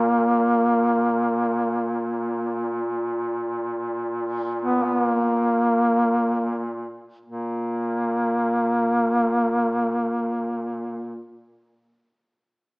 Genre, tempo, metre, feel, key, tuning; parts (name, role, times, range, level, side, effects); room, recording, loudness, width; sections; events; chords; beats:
caucasian folk, Caucasian lament; free time; A4 = 442 Hz
mellow duduk; melody; 0.0-11.2 s; Bb3 to Cb4; -21 LUFS; equal
warm duduk; drone; 0.0-11.2 s; Bb2; -28 LUFS; equal
moderate recital hall reverb, RT60 1.6 s; recorded in a church or concert hall, small speaker sound; -20 LUFS; side -35 dB against mid
0.0-7.2 A section; 7.2-12.8 B section
slowing down 0.0-7.2
free time